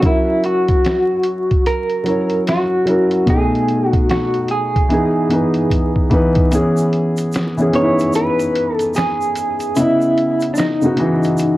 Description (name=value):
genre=lo-fi hip hop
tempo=74 BPM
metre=4/4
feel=swing 63% on 16ths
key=E major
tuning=A4 = 438 Hz
part: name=electric guitar through a small old amp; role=melody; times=0.0-11.6 s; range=D4 to C#5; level=-18 LUFS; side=equal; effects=tremolo, low-pass filter, cassette tape, tape echo
part: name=felt-muted upright piano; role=accompaniment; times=0.0-11.6 s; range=B2 to D#5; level=-17 LUFS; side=equal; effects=cassette tape, low-pass filter
part: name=lo-fi sampler-style drum kit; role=drums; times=0.0-11.6 s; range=finger snaps, hi-hat, kick drum, snare drum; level=-18 LUFS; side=equal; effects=cassette tape
part: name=egg shaker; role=percussion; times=6.5-11.6 s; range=none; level=-36 LUFS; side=right 4 dB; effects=none
room=light reverb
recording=home recording on cassette, vinyl crackle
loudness=-14 LUFS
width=side -17 dB against mid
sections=0.0-6.5 A section; 6.5-11.6 B section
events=drum fill 5.7-6.5; kick muted 6.5-11.6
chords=0.0 F#7; 3.3 B7; 4.9 Emaj7; 6.5 E6; 9.8 C#m9